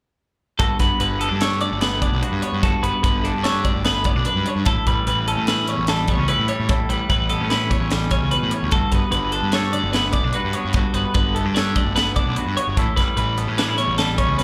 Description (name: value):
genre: math rock and midwest emo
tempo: 148 BPM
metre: 5/4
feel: straight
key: G lydian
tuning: A4 = 440 Hz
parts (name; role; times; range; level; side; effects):
- twangy electric guitar; accompaniment; 0.6-14.4 s; D2 to A4; -27 LUFS; equal; slapback echo
- twelve-string electric guitar; arpeggios; 0.6-14.4 s; A4 to D5; -25 LUFS; equal; none
- fuzz picked electric bass; bass; 0.6-14.4 s; G1 to A2; -26 LUFS; equal; overdrive
- crisp fusion drum kit; drums; 0.6-14.4 s; hi-hat, kick drum, snare drum; -25 LUFS; equal; none
room: small room ambience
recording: live gig heard through the venue's PA, club reverb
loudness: -20 LUFS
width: mono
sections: 0.6-14.4 A section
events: none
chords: 0.6 Gmaj7; 4.7 A7; 8.7 Gmaj7; 12.8 A7